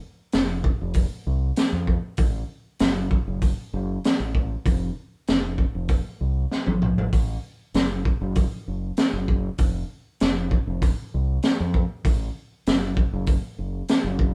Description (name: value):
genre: psychedelic rock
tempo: 97 BPM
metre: 4/4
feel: straight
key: unclear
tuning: A4 = 440 Hz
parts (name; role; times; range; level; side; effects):
- growling fingered electric bass; bass; 0.3-14.3 s; F1 to F2; -29 LUFS; equal; overdrive
- crunchy breakbeat drum kit; drums; 0.3-14.3 s; hi-hat, kick drum, snare drum, toms; -24 LUFS; equal; none
room: little or no reverb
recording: band playing live in one room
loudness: -24 LUFS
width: mono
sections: 0.0-14.3 A section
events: drum fill 6.5-7.1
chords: none